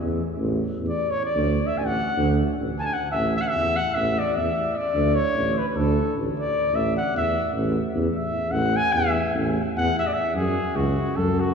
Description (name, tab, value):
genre	balkan folk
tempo	301 BPM (eighths)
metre	9/8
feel	straight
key	A major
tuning	A4 = 439 Hz
part	mellow tuba	bass	0.0-11.5 s	A1 to F#2	-24 LUFS	right 1 dB	none
part	dark trumpet	melody	0.9-11.5 s	F#4 to A5	-24 LUFS	left 2 dB	none
room	wet cathedral reverb, RT60 4.5 s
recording	recorded in a church or concert hall, small room ambience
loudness	-21 LUFS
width	side -6 dB against mid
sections	0.0-10.3 A section; 10.3-11.5 B section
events	trumpet solo 0.0-10.3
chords	0.0 A5; 1.4 D; 3.1 A5; 4.9 D5; 6.7 A5; 10.3 F#5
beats	0.17 0.36 0.56 0.76 0.96 1.16 | 1.35 1.55 1.75 1.95 2.15 2.35 2.55 2.75 2.94 | 3.14 3.34 3.54 3.74 3.94 4.14 4.34 4.54 4.74 | 4.94 5.13 5.33 5.53 5.73 5.93 6.13 6.33 6.53 | 6.73 6.93 7.13 7.33 7.53 7.73 7.93 8.13 8.33 | 8.53 8.73 8.93 9.13 9.33 9.53 9.73 9.93 10.13 | 10.34 10.54 10.74 10.94 11.14 11.34